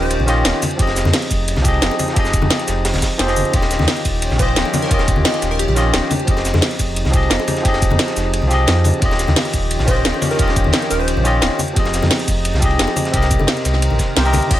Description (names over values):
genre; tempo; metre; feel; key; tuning
liquid drum and bass; 175 BPM; 4/4; straight; F minor; A4 = 440 Hz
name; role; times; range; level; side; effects
plucky unison lead; melody; 0.0-0.3, 4.4-5.7, 9.9-11.2 s; G4 to Eb5; -26 LUFS; equal; digital delay
barky tine electric piano; accompaniment; 0.0-14.6 s; C3 to Eb5; -20 LUFS; equal; overdrive, digital delay
lush unison pad; sustained chords; 0.0-14.6 s; Eb3 to Bb4; -27 LUFS; equal; chorus, sidechain pumping
sub bass with octave; bass; 0.0-14.6 s; Eb1 to F2; -19 LUFS; equal; none
drum and bass drum kit; drums; 0.0-14.6 s; cabasa, crash cymbal, hi-hat, ride cymbal, rim click, snare drum; -20 LUFS; equal; none
crunchy breakbeat drum kit; drums; 0.1-14.6 s; hi-hat, ride cymbal, snare drum; -25 LUFS; equal; high-pass filter on cymbals, high-pass filter on hats, high-pass filter on snare, high-pass filter on room
congas and bongos; percussion; 0.2-14.4 s; none; -24 LUFS; left 2 dB; none
electronic kick drum; drums; 0.8-14.6 s; none; -18 LUFS; equal; none
room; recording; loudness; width
light reverb, small room ambience; none; -14 LUFS; side -13 dB against mid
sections
0.0-14.5 A section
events
drop 0.0-14.5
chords
0.0 Eb9; 0.6 Fm9; 3.5 Eb9; 6.1 Fm9; 9.0 Eb9; 11.6 Fm9; 13.1 Cm7